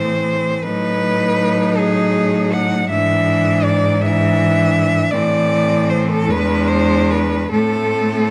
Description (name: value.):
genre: classical, lyrical piece for cello ensemble.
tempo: 47-56 BPM (dotted quarters).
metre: 6/8.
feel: rubato.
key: unclear.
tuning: A4 = 439 Hz.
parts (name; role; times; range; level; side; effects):
rich cello; melody; 0.0-8.3 s; G#4 to F#5; -21 LUFS; equal; none.
clear cello; second line; 0.0-8.3 s; C4 to D#4; -26 LUFS; equal; none.
rich cello; accompaniment; 0.0-8.3 s; E3 to A3; -22 LUFS; equal; none.
clear cello; bass; 0.0-8.3 s; E2 to A2; -22 LUFS; equal; none.
room: moderate recital hall reverb, RT60 1.3 s.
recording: close, detailed microphones.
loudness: -16 LUFS.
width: mono.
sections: 0.0-8.3 A section.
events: none.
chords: 0.0 Am; 0.6 B7/A; 2.9 E7/G#; 5.1 Am; 6.3 E7; 7.5 Am.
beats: | 0.63 1.80 | 2.91 4.02 | 5.12 6.29 | 7.52.